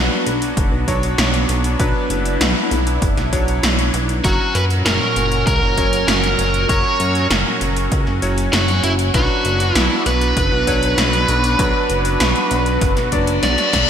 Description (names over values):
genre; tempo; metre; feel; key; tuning
synthwave; 98 BPM; 4/4; straight; B harmonic minor; A4 = 438 Hz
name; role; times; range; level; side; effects
phased analog pad; sustained chords; 0.0-13.9 s; A#2 to F#4; -24 LUFS; right 1 dB; phaser, chorus, sidechain pumping
bright electric grand piano; stabs; 0.0-13.9 s; F#3 to A#5; -24 LUFS; left 1 dB; analog chorus, ping-pong delay
chorused synth bass; bass; 0.0-13.9 s; F#1 to F#2; -20 LUFS; equal; none
80s electronic pad drums; drums; 0.3-13.9 s; hi-hat, snare drum; -21 LUFS; equal; overdrive, gated reverb
electronic kick drum; drums; 0.6-13.9 s; none; -21 LUFS; equal; overdrive
biting lead guitar; melody; 4.2-13.9 s; E4 to D5; -19 LUFS; right 1 dB; overdrive, digital delay
reverse cymbal; sound effects; 13.1-13.9 s; none; -21 LUFS; left 7 dB; none
room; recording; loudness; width
moderate lush hall reverb, RT60 2.7 s; bright 1980s-style digital production; -14 LUFS; side -8 dB against mid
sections
0.0-13.9 A section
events
reverse cymbal 13.1-13.9; drum fill 13.4-13.9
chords
0.0 Bm; 4.2 F#; 9.1 Bm